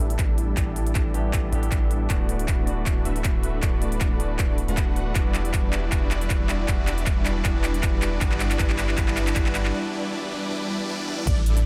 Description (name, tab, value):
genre	future bass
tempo	157 BPM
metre	4/4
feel	swing 55% on 16ths, half-time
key	unclear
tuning	A4 = 440 Hz
part	barky tine electric piano	accompaniment	0.0-11.3 s	E3 to G4	-36 LUFS	equal	sidechain pumping, dub echo
part	airy breathy pad	sustained chords	0.0-9.7 s	G3 to B5	-44 LUFS	equal	none
part	supersaw chords	riff	0.0-11.7 s	G3 to F#5	-32 LUFS	equal	sidechain pumping, low-pass filter
part	long sustained 808-style bass	bass	0.0-11.7 s	D1 to A1	-29 LUFS	equal	tube saturation, sidechain pumping
part	big-room dance drum kit	drums	0.0-11.6 s	crash cymbal, handclaps, hi-hat, toms	-33 LUFS	equal	high-pass filter on snare, high-pass filter on hats, high-pass filter on toms, high-pass filter on cymbals, high-pass filter on room
part	electronic kick drum	drums	0.2-11.4 s	none	-26 LUFS	equal	none
part	riser and downlifter	sound effects	9.8-11.7 s	none	-42 LUFS	equal	none
part	unison pluck	arpeggios	11.3-11.7 s	D5	-41 LUFS	equal	cassette tape, sidechain pumping, dub echo
room	light reverb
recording	none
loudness	-24 LUFS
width	mono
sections	0.0-11.3 A section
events	build-up 0.0-11.3; drum fill 0.0-9.7, 11.1; filter sweep on supersaw synth 0.0-11.3; break 9.7-11.3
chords	0.0 A7sus4; 2.1 D6; 5.2 Em7; 8.2 Gmaj7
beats	0.19 | 0.57 0.95 1.33 1.72 | 2.10 2.48 2.86 3.24 | 3.63 4.01 4.39 4.77 | 5.16 5.54 5.92 6.30 | 6.68 7.07 7.45 7.83 | 8.21 8.60 8.98 9.36 | 9.74 10.12 10.51 10.89 | 11.27 11.65